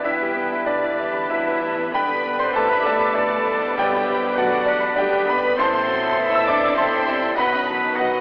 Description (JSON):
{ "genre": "classical", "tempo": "99 BPM", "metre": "3/4", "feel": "rubato", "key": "unclear", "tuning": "A4 = 442 Hz", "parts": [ { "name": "clear grand piano", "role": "melody", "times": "0.0-8.2 s", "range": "A1 to E6", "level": "-24 LUFS", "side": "equal", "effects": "none" }, { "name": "warm studio violin section", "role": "melody", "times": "0.0-8.2 s", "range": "G4 to E5", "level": "-37 LUFS", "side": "equal", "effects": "none" }, { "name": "bright clarinet", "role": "second line", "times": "0.0-8.2 s", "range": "D4 to E5", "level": "-30 LUFS", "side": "equal", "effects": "none" }, { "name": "clear oboe", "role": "second line", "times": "0.0-8.2 s", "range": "A4 to D#5", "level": "-30 LUFS", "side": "equal", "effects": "none" }, { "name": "large flute ensemble", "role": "second line", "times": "0.0-8.2 s", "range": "F#5 to D6", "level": "-34 LUFS", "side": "equal", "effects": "none" }, { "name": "warm studio violin section", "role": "second line", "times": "0.0-8.2 s", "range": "D5 to E6", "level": "-32 LUFS", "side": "equal", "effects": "none" }, { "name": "mellow bassoon", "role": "accompaniment", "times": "0.0-8.2 s", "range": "C3 to A3", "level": "-34 LUFS", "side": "equal", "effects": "none" }, { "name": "rich studio viola section", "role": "accompaniment", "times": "0.0-8.2 s", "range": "G3 to E4", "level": "-34 LUFS", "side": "equal", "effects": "none" }, { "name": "mellow French horn section", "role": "sustained chords", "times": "0.0-8.2 s", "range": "D3 to E4", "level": "-38 LUFS", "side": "equal", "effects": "none" }, { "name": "warm trombone section", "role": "sustained chords", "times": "0.0-8.2 s", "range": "D3 to E4", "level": "-34 LUFS", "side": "equal", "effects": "none" }, { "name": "mellow trumpet section", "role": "stabs", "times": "0.0-8.2 s", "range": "F#4 to B4", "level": "-32 LUFS", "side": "equal", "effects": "none" }, { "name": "dark studio cello section", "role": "bass", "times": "0.0-8.2 s", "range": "D3 to E4", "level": "-36 LUFS", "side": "equal", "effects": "none" }, { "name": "rich studio double bass section", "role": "bass", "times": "0.0-8.2 s", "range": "G1 to E2", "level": "-46 LUFS", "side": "equal", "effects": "none" }, { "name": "timpani", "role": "percussion", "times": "3.8-4.6 s", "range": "B2", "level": "-41 LUFS", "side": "equal", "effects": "none" } ], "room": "wet scoring stage reverb, RT60 1.5 s", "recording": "vinyl crackle, telephone sound", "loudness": "-20 LUFS", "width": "mono", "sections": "0.0-8.2 A section", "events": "none", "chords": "0.0 Em/G; 1.9 G; 3.8 G/B; 5.6 Am; 7.3 B", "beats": "| 0.04 0.66 1.29 | 1.93 2.54 3.15 | 3.77 4.37 4.97 | 5.56 6.16 6.75 | 7.35 7.96" }